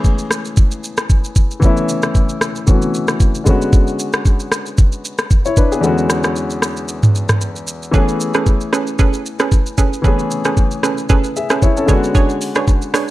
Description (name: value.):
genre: amapiano.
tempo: 114 BPM.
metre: 4/4.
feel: swing 55% on 16ths.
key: unclear.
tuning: A4 = 440 Hz.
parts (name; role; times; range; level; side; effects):
warm grand piano; accompaniment; 0.0-13.1 s; E2 to E5; -19 LUFS; left 2 dB; none.
smooth R&B drum kit; drums; 0.0-13.1 s; hi-hat, kick drum, rim click, shaker, toms; -14 LUFS; equal; none.
hollow square pluck; stabs; 7.9-13.1 s; C#4 to C#5; -20 LUFS; right 6 dB; chorus, tape echo.
room: digital ambience.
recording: dark, warm production.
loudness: -13 LUFS.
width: side -16 dB against mid.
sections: 0.0-13.1 A section.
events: kick muted 5.8-7.9.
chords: 0.0 Amaj9; 3.5 Bm69; 5.8 E13; 7.9 Amaj9; 11.9 Bm69.